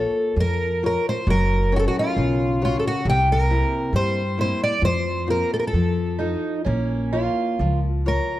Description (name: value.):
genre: fado-style ballad.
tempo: 66 BPM.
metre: 2/4.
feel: rubato.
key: Bb harmonic minor.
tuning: A4 = 439 Hz.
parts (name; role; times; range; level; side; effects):
fingerpicked twelve-string acoustic guitar; melody; 0.0-8.4 s; F4 to D5; -22 LUFS; equal; none.
nylon-string guitar; accompaniment; 0.0-8.4 s; C3 to Db5; -26 LUFS; left 3 dB; none.
upright bass; bass; 0.0-8.2 s; Gb1 to G2; -23 LUFS; equal; none.
fingerpicked twelve-string acoustic guitar; second line; 6.2-7.8 s; Db4 to F4; -27 LUFS; right 6 dB; none.
room: light reverb.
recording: dark, warm production.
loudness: -19 LUFS.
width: side -14 dB against mid.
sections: 0.0-8.4 A section.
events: none.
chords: 0.0 Bbm; 1.3 Gb; 3.0 C7; 4.8 Fsus4; 5.7 F7; 6.7 Bbm.